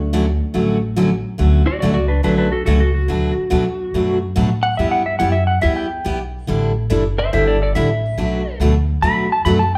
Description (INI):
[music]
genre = country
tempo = 141 BPM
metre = 4/4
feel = swing 66% on 8ths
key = D major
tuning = A4 = 440 Hz
[part]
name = hollow-body jazz guitar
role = melody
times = 0.0-0.9 s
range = A3 to D4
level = -31 LUFS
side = equal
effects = none
[part]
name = upright bass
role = bass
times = 0.0-9.8 s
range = F#1 to A2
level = -22 LUFS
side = equal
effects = none
[part]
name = picked steel-string acoustic guitar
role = accompaniment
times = 0.1-9.6 s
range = B2 to A4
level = -22 LUFS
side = equal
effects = none
[part]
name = clean lap steel guitar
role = second line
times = 1.7-9.8 s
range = D4 to B5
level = -22 LUFS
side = equal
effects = none
[sound]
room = moderate large studio reverb, RT60 0.9 s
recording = band playing live in one room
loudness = -18 LUFS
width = mono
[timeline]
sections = 0.0-1.4 A section; 1.4-9.8 B section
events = electric slide guitar solo 1.4-9.8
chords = 0.0 Dmaj7; 3.1 Bm7; 4.8 G6; 6.5 A7sus4; 8.2 Bm7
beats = 0.12 0.55 0.97 | 1.40 1.82 2.25 2.67 | 3.09 3.52 3.94 4.37 | 4.79 5.21 5.64 6.06 | 6.49 6.91 7.34 7.76 | 8.19 8.61 9.03 9.46